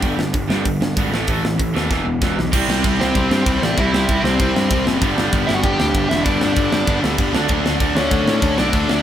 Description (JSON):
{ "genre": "punk rock", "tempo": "193 BPM", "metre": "4/4", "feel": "straight", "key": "unclear", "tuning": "A4 = 440 Hz", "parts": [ { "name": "distorted electric guitar", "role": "riff", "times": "0.0-9.0 s", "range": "E2 to D4", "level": "-25 LUFS", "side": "left 6 dB", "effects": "distortion" }, { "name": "raw garage guitar", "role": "riff", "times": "0.0-9.0 s", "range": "E2 to D4", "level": "-23 LUFS", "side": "right 2 dB", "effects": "overdrive" }, { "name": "fuzz picked electric bass", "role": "bass", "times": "0.0-9.0 s", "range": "E1 to A2", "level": "-22 LUFS", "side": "equal", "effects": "overdrive" }, { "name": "tight metal drum kit", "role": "drums", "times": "0.0-9.0 s", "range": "crash cymbal, hi-hat, kick drum, snare drum", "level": "-20 LUFS", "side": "equal", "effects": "none" }, { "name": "high-gain distorted guitar", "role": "riff", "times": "2.5-9.0 s", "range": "G2 to E4", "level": "-24 LUFS", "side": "right 1 dB", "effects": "distortion" }, { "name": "bluesy overdriven lead guitar", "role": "melody", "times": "3.0-9.0 s", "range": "C4 to G5", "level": "-21 LUFS", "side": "equal", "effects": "distortion" } ], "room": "light reverb", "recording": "band playing live in one room", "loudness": "-15 LUFS", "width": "side -10 dB against mid", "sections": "0.0-2.5 A section; 2.5-9.0 B section", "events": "drum fill 1.9-2.5", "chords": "0.0 G5; 1.1 A5; 1.9 E5; 2.5 C; 5.0 G; 7.3 D" }